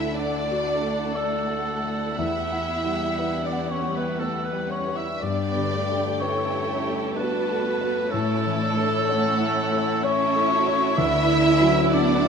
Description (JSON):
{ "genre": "cinematic", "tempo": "57-64 BPM", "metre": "3/4", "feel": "rubato", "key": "E dorian", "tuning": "A4 = 440 Hz", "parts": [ { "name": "rich symphonic violin section", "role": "melody", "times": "0.0-12.3 s", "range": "A4 to E5", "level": "-32 LUFS", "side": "left 4 dB", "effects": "none" }, { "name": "dark symphonic violin section", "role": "second line", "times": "0.0-12.3 s", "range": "G4 to A5", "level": "-33 LUFS", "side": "equal", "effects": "none" }, { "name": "clear grand piano", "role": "accompaniment", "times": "0.0-12.3 s", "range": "D2 to F#5", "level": "-28 LUFS", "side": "left 3 dB", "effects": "none" }, { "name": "warm symphonic viola section", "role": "accompaniment", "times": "0.0-12.3 s", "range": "A3 to A4", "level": "-30 LUFS", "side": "right 5 dB", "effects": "none" }, { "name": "concert harp", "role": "arpeggios", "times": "0.0-12.3 s", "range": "G2 to F#5", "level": "-32 LUFS", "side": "left 7 dB", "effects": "none" }, { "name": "warm symphonic cello section", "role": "bass", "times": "0.0-12.3 s", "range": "A3 to E4", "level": "-28 LUFS", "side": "right 5 dB", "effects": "none" }, { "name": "mellow oboe", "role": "second line", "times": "0.2-12.3 s", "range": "A4 to E5", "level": "-26 LUFS", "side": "equal", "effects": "none" } ], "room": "moderate scoring stage reverb, RT60 2.0 s", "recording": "none", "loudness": "-21 LUFS", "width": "side -6 dB against mid", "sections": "0.0-12.3 A section", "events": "none", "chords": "0.0 Dadd9; 2.2 Emadd9; 5.2 Gadd9; 8.1 A; 11.0 Dadd9", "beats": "0.18 1.15 | 2.18 3.19 4.20 | 5.21 6.21 7.18 | 8.13 9.09 10.04 | 10.98 11.93" }